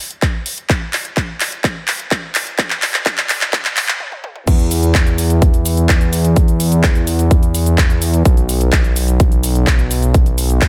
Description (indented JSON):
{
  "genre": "EDM, festival progressive house",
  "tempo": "127 BPM",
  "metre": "4/4",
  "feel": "straight",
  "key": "unclear",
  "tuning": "A4 = 442 Hz",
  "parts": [
    { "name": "big-room dance drum kit", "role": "drums", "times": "0.1-10.7 s", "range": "cabasa, crash cymbal, handclaps, hi-hat, toms", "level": "-21 LUFS", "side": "equal", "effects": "high-pass filter on hats, high-pass filter on snare, high-pass filter on toms, high-pass filter on cymbals, high-pass filter on perc" },
    { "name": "electronic kick drum", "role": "drums", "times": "0.2-10.7 s", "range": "none", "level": "-16 LUFS", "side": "equal", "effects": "none" },
    { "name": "fat analog bass", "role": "bass", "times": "4.5-10.7 s", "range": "B1 to E2", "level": "-17 LUFS", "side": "equal", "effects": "sidechain pumping" }
  ],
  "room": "digital ambience",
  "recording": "high-pass filter",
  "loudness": "-15 LUFS",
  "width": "mono",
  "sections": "0.0-4.5 A section; 4.5-10.7 B section",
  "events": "build-up 0.0-4.5; drum fill 0.0-4.0, 4.0-4.5; stop 4.0-4.5; drop 4.5-10.7",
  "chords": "none",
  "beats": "0.22 | 0.70 1.17 1.64 2.11 | 2.59 3.06 3.53 4.00 | 4.47 4.95 5.42 5.89 | 6.37 6.84 7.31 7.78 | 8.26 8.73 9.20 9.67 | 10.14 10.62"
}